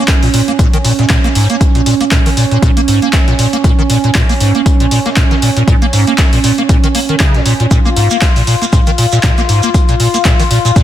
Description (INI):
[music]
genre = acid house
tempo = 118 BPM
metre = 4/4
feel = swing 56% on 16ths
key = Bb minor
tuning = A4 = 440 Hz
[part]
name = warm analog pad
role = sustained chords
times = 0.0-10.8 s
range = Db4 to F4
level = -16 LUFS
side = right 4 dB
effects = chorus, sidechain pumping
[part]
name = liquid acid bass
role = riff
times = 0.0-10.8 s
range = Ab2 to Bb3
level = -13 LUFS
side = left 1 dB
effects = ensemble chorus, sidechain pumping
[part]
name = dusty soul sampler-style drum kit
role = drums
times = 0.1-10.8 s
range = hi-hat, snare drum, tambourine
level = -26 LUFS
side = left 2 dB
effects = none
[part]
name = electronic kick drum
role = drums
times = 0.1-10.8 s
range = none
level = -11 LUFS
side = equal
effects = overdrive
[part]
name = punchy analog drum machine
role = drums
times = 0.1-10.8 s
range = handclaps, hi-hat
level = -18 LUFS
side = equal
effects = overdrive
[part]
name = shekere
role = percussion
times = 7.7-10.8 s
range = none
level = -23 LUFS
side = right 6 dB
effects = none
[sound]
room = little or no reverb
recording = dense, heavily limited modern master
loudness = -8 LUFS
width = side -11 dB against mid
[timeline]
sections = 0.0-10.8 A section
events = none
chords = 0.0 Bbm